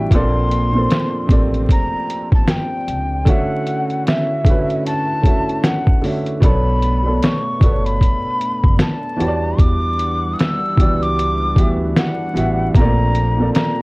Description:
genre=lo-fi hip hop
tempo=76 BPM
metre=4/4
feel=swing 59% on 16ths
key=unclear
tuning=A4 = 440 Hz
part: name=breathy mellow jazz flute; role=melody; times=0.0-13.8 s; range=E5 to E6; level=-22 LUFS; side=left 1 dB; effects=low-pass filter, plate reverb
part: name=warm upright piano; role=accompaniment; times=0.0-13.8 s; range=Bb2 to E5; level=-21 LUFS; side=right 1 dB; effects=low-pass filter, plate reverb
part: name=warm analog pad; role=sustained chords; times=0.0-13.8 s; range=D3 to F#5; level=-29 LUFS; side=equal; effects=chorus, low-pass filter, plate reverb
part: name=upright bass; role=bass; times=0.0-13.5 s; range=F#1 to E2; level=-20 LUFS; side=equal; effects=none
part: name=trip hop sampler-style drum kit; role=drums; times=0.1-13.8 s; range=hi-hat, kick drum, snare drum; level=-15 LUFS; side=equal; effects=vintage 12-bit sampler grit
room=light reverb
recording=worn, warbling old tape, cassette tape, vinyl crackle, warbly pitch drift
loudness=-14 LUFS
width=side -25 dB against mid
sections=0.0-13.8 A section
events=none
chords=0.1 Bbmaj9; 3.3 Dmaj9; 6.4 Bm9; 9.2 Em9; 12.7 Bbmaj9

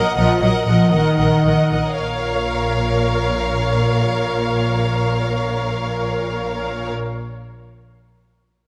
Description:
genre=classical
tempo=111 BPM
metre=4/4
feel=straight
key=Bb minor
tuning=A4 = 443 Hz
part: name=rich studio violin section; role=melody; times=0.0-6.9 s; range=F5 to Gb5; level=-29 LUFS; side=equal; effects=none
part: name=warm symphonic violin section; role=second line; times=0.0-6.9 s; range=Db5 to Eb5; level=-26 LUFS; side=equal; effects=none
part: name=warm symphonic viola section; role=accompaniment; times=0.0-6.9 s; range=Bb4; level=-26 LUFS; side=equal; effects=none
part: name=dark symphonic double bass section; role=bass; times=0.2-6.9 s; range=Bb1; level=-25 LUFS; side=equal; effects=none
part: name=rich symphonic cello section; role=bass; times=0.2-6.9 s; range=Bb2 to Gb3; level=-23 LUFS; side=equal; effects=none
room=moderate scoring stage reverb, RT60 1.9 s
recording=none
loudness=-19 LUFS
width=mono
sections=0.0-2.0 A section; 2.0-6.3 B section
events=slowing down 0.0-2.0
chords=0.0 Ebm/Bb; 2.0 Bbm

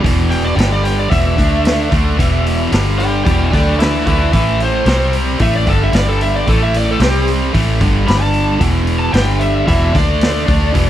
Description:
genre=blues rock power trio and southern rock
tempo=112 BPM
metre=4/4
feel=straight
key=unclear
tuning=A4 = 444 Hz
part: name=tight distorted guitar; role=riff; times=0.0-10.9 s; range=E2 to D4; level=-17 LUFS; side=right 1 dB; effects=distortion
part: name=vintage muted fingered electric bass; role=bass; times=0.0-10.9 s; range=E1 to D2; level=-16 LUFS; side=equal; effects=none
part: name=raw garage drum kit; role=drums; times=0.0-10.9 s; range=hi-hat, kick drum, snare drum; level=-18 LUFS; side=equal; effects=none
part: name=overdriven slide guitar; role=melody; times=0.3-10.9 s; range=G4 to B5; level=-19 LUFS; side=left 1 dB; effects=slapback echo
room=small room ambience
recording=dry, close 1970s-style studio recording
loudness=-12 LUFS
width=side -12 dB against mid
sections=0.0-10.9 A section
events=electric slide guitar solo 0.0-10.9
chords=0.0 E5; 0.6 G5; 1.1 E5; 1.4 D5; 1.9 E5; 2.7 G5; 3.3 E5; 3.5 D5; 4.3 A5; 4.9 C5; 5.4 A5; 5.9 G5; 6.5 A5; 7.0 C5; 7.5 A5; 8.1 G5; 8.6 E5; 9.2 G5; 9.7 E5; 10.0 D5

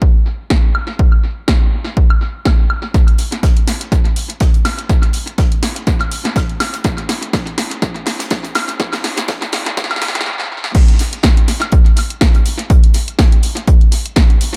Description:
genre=house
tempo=123 BPM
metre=4/4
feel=swing 55% on 16ths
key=none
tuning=none
part: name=electronic kick drum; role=drums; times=0.0-14.3 s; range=none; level=-14 LUFS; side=equal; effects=none
part: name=punchy analog drum machine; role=drums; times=0.5-14.6 s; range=crash cymbal, hi-hat, snare drum, woodblock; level=-21 LUFS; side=equal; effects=tape echo
part: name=modern studio drum kit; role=drums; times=2.9-14.6 s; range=hi-hat, snare drum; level=-34 LUFS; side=equal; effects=none
room=light reverb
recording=echo-heavy mix, high-pass filter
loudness=-15 LUFS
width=mono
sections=0.0-2.9 A section; 2.9-10.7 B section; 10.7-14.6 C section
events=build-up 2.9-10.7; drum fill 2.9-10.3, 10.3-10.7; filter sweep 2.9-10.7; stop 10.3-10.7; drop 10.7-14.6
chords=none

